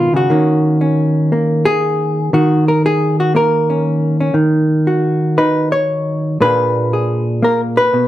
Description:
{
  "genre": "solo jazz",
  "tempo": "118 BPM",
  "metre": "4/4",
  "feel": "swing 68% on 8ths, rubato",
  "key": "Eb minor",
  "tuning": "A4 = 440 Hz",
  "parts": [
    { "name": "hollow-body jazz guitar", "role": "solo", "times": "0.0-8.1 s", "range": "Ab2 to Db5", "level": "-12 LUFS", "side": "equal", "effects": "none" }
  ],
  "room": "moderate large studio reverb, RT60 0.8 s",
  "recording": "dark, warm production",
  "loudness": "-12 LUFS",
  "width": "side -13 dB against mid",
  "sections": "0.0-8.1 A section",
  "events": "none",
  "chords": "0.3 Ebm7; 6.4 Bb7b9"
}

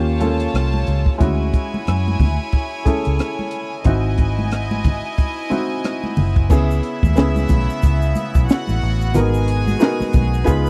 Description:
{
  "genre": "lush 1970s-style soul",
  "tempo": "91 BPM",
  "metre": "4/4",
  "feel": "swing 58% on 16ths",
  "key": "C# minor from 6.5 s",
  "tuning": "A4 = 440 Hz",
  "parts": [
    { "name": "clear studio violin section", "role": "second line", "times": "0.0-10.7 s", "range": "E4 to B5", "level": "-29 LUFS", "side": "equal", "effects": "none" },
    { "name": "dark baby grand piano", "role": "accompaniment", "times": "0.0-10.7 s", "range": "G#3 to A#4", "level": "-26 LUFS", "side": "equal", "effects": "none" },
    { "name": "vintage muted fingered electric bass", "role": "bass", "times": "0.0-10.7 s", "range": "F#1 to F#2", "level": "-21 LUFS", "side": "equal", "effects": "none" },
    { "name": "compact cocktail drum kit", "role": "drums", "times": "0.2-10.7 s", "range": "crash cymbal, hi-hat, kick drum, rim click, snare drum", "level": "-20 LUFS", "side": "equal", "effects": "none" },
    { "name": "congas", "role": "percussion", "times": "0.2-10.3 s", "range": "none", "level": "-28 LUFS", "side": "equal", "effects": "none" },
    { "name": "warm studio string section", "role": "sustained chords", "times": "6.5-10.7 s", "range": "B2 to F#4", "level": "-32 LUFS", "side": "equal", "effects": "none" },
    { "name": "egg shaker", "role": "percussion", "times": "6.5-10.7 s", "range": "none", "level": "-47 LUFS", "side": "equal", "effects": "none" }
  ],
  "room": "studio reverb",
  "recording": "dry, close 1970s-style studio recording",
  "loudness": "-18 LUFS",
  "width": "mono",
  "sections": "0.0-6.5 A section; 6.5-10.7 B section",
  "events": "none",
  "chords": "0.0 D#9; 1.2 Dmaj9#11; 3.9 G#7b13; 6.5 C#m7; 9.2 G#m7"
}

